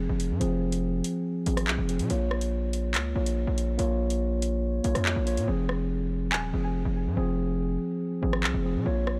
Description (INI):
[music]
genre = hip hop, drill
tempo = 142 BPM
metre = 4/4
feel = half-time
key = F minor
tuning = A4 = 440 Hz
[part]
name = mellow tine electric piano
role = accompaniment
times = 0.0-9.2 s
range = F3 to Db5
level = -32 LUFS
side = equal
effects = low-pass filter
[part]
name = distorted 808-style bass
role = bass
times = 0.0-9.2 s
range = Eb1 to C3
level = -31 LUFS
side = equal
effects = distortion
[part]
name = drill drum kit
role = drums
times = 0.2-9.2 s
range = handclaps, hi-hat, rim click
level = -34 LUFS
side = equal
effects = none
[part]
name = soft round pluck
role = second line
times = 6.3-6.7 s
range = Ab5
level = -42 LUFS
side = equal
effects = chorus, delay
[sound]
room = little or no reverb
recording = dark, warm production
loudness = -28 LUFS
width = mono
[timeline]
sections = 0.0-9.2 A section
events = filter sweep on tine electric piano 0.0-5.5; hi-hats muted 5.5-9.2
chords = 0.0 Fm; 2.1 Bbm; 5.5 Fm